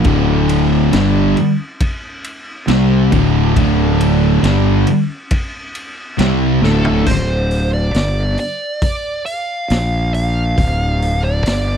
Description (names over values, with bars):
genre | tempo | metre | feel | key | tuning
stoner and doom metal | 68 BPM | 4/4 | straight | D minor | A4 = 440 Hz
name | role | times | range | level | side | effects
distorted electric guitar | riff | 0.0-7.1 s | D2 to C4 | -20 LUFS | equal | distortion
thick fuzz guitar | riff | 0.0-7.1 s | D2 to C4 | -17 LUFS | left 12 dB | distortion
thick fuzz guitar | riff | 0.0-7.1 s | D2 to C4 | -17 LUFS | right 12 dB | distortion
raw garage drum kit | drums | 0.0-11.7 s | crash cymbal, hi-hat, kick drum, ride cymbal, snare drum, toms | -21 LUFS | equal | none
fuzz fingered electric bass | bass | 0.1-11.8 s | D1 to C2 | -16 LUFS | equal | overdrive
fuzz lead guitar | melody | 6.6-11.8 s | A4 to F5 | -21 LUFS | right 2 dB | wah, distortion, tape echo
room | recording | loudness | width
little or no reverb | dry, close 1970s-style studio recording | -13 LUFS | side -8 dB against mid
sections
0.0-7.1 A section; 7.1-11.8 B section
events
drum fill 6.6-7.1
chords
0.1 D5; 7.1 D7(no3); 9.7 Bb5; 10.6 Dm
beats
| 0.05 0.93 1.80 2.68 | 3.56 4.43 5.31 6.19 | 7.07 7.95 8.82 9.70 | 10.58 11.46